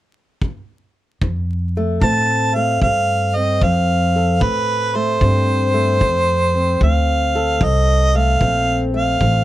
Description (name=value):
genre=acoustic country blues, solo or duo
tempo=75 BPM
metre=4/4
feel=swing 65% on 8ths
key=F major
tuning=A4 = 440 Hz
part: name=kick drum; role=drums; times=0.4-9.4 s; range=none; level=-20 LUFS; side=equal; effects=none
part: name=fingerpicked old ladder-braced acoustic guitar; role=accompaniment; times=1.2-9.4 s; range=F2 to A4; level=-22 LUFS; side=left 2 dB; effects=none
part: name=upright bass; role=bass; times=1.2-9.4 s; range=A1 to A2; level=-18 LUFS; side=equal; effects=none
part: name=mellow harmonica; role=melody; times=2.0-9.4 s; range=B4 to A5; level=-18 LUFS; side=right 2 dB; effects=none
room=little or no reverb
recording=vinyl crackle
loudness=-15 LUFS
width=side -14 dB against mid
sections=0.0-1.2 A section; 1.2-9.4 B section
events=none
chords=0.0 N.C.; 1.2 F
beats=0.41 | 1.22 2.02 2.82 3.62 | 4.42 5.22 6.02 6.82 | 7.62 8.41 9.21